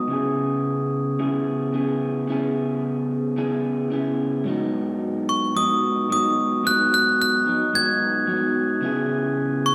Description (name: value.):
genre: indie pop.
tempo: 110 BPM.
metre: 4/4.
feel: swing 55% on 16ths.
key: G# minor.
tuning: A4 = 440 Hz.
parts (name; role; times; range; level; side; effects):
electric guitar through a small old amp; accompaniment; 0.0-9.7 s; G#2 to G#4; -25 LUFS; equal; warbly pitch drift, low-pass filter.
glockenspiel with brass mallets; melody; 5.3-9.7 s; C#6 to G#6; -24 LUFS; equal; none.
room: wet recital hall reverb, RT60 1.4 s.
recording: recorded in a church or concert hall.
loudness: -22 LUFS.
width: mono.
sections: 0.0-4.5 A section; 4.5-9.7 B section.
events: filter sweep on clean electric guitar 0.0-4.5.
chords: 0.1 C#m7; 4.5 G#m7; 8.8 C#m7.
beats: | 0.09 0.64 1.19 1.73 | 2.28 2.82 3.37 3.91 | 4.46 5.00 5.55 6.09 | 6.63 7.18 7.72 8.27 | 8.81 9.36.